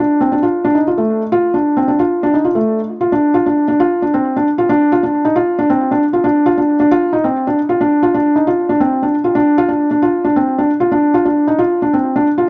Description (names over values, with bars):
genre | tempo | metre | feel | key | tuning
rock | 269 BPM (eighths) | 7/8 | straight | unclear | A4 = 440 Hz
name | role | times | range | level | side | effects
felt-muted upright piano | solo | 0.0-12.5 s | A3 to F4 | -14 LUFS | equal | tape echo
room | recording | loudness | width
moderate studio reverb, RT60 0.6 s | dark, warm production, nothing above 7.6 kHz | -14 LUFS | mono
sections
0.0-2.9 A section; 2.9-12.5 B section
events
none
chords
none